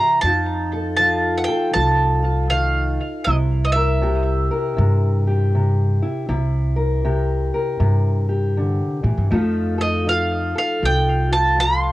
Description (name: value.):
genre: acoustic country blues, solo or duo.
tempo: 79 BPM.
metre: 4/4.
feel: swing 63% on 8ths.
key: C mixolydian.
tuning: A4 = 442 Hz.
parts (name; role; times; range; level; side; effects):
bowl-back mandolin; melody; 0.0-11.9 s; Eb5 to C6; -20 LUFS; right 2 dB; analog delay.
fingerpicked steel-string acoustic guitar; accompaniment; 0.0-11.9 s; C3 to Bb4; -22 LUFS; left 1 dB; cassette tape.
upright bass; bass; 0.2-11.9 s; C2 to A2; -20 LUFS; equal; none.
room: moderate booth ambience, RT60 0.2 s.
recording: home recording on cassette.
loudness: -17 LUFS.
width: side -17 dB against mid.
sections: 0.0-11.9 A section.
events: none.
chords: 0.2 F7; 3.3 C7; 9.3 F7.